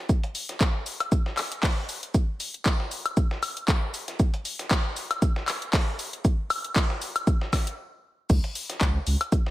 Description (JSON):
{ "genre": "deep house", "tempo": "117 BPM", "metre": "4/4", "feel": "swing 56% on 16ths", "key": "unclear", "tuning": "A4 = 441 Hz", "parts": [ { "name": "dusty soul sampler-style drum kit", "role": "drums", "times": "0.1-9.5 s", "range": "hi-hat, shaker, snare drum", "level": "-37 LUFS", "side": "right 1 dB", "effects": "high-pass filter on perc, high-pass filter on hats, high-pass filter on snare, high-pass filter on room" }, { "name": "electronic kick drum", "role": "drums", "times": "0.1-9.4 s", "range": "none", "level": "-23 LUFS", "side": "equal", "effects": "overdrive" }, { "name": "house drum kit", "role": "drums", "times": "0.1-9.4 s", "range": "crash cymbal, handclaps, hi-hat, woodblock", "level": "-29 LUFS", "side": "left 2 dB", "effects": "overdrive" }, { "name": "warm sub bass", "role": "bass", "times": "8.3-9.2 s", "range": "Db2", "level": "-24 LUFS", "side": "equal", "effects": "sidechain pumping" } ], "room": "light reverb", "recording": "none", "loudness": "-24 LUFS", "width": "side -16 dB against mid", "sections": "0.0-8.3 A section; 8.3-9.5 B section", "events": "build-up 0.0-8.3; stop 7.8-8.3; drop 8.3-9.5", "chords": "none", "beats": "| 0.09 0.60 1.12 1.63 | 2.14 2.66 3.17 3.68 | 4.20 4.71 5.22 5.73 | 6.25 6.76 7.27 7.79 | 8.30 8.81 9.32" }